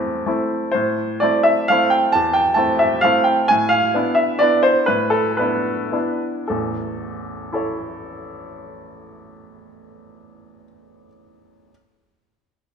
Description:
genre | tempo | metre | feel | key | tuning
classical, piano waltz | 100-138 BPM | 3/4 | rubato | unclear | A4 = 440 Hz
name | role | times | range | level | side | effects
bright upright piano | solo | 0.0-11.7 s | A1 to A5 | -17 LUFS | equal | none
room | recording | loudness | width
wet recital hall reverb, RT60 1.6 s | minimal, uncompressed stereo recording | -16 LUFS | side -6 dB against mid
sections
0.8-6.5 A section; 6.5-9.6 B section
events
slowing down 2.8-6.5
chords
0.0 Am; 3.5 E5/A; 6.5 A

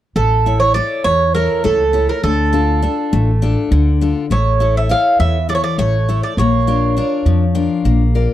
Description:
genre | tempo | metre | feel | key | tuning
greek folk | 203 BPM (eighths) | 7/8 | straight | unclear | A4 = 440 Hz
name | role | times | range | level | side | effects
Greek bouzouki | melody | 0.2-8.1 s | A4 to F5 | -17 LUFS | right 3 dB | none
picked steel-string acoustic guitar | accompaniment | 0.2-8.3 s | D3 to D5 | -19 LUFS | left 6 dB | none
upright bass | bass | 0.2-8.3 s | A1 to F2 | -16 LUFS | equal | none
room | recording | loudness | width
little or no reverb | dry, close 1970s-style studio recording | -13 LUFS | side -12 dB against mid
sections
0.2-8.3 A section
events
none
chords
0.2 A; 2.2 Dm; 4.3 A; 6.4 Bb

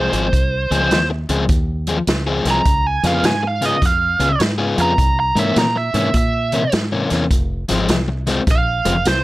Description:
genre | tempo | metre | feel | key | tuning
electric blues shuffle | 103 BPM | 4/4 | swing 65% on 8ths | F minor | A4 = 440 Hz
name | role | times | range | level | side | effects
biting lead guitar | melody | 0.0-9.2 s | C5 to Bb5 | -18 LUFS | right 3 dB | overdrive
overdriven semi-hollow guitar | riff | 0.0-9.0 s | F2 to Ab4 | -19 LUFS | left 3 dB | none
fingered electric bass | bass | 0.0-9.2 s | F1 to Bb2 | -21 LUFS | equal | none
vintage drum kit | drums | 0.1-9.2 s | hi-hat, kick drum, snare drum | -20 LUFS | equal | none
room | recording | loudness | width
light reverb | none | -15 LUFS | side -18 dB against mid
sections
0.0-9.2 A section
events
lead electric guitar solo 0.0-9.2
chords
0.0 Fm; 2.7 Db7; 5.0 C7b9; 7.3 Fm

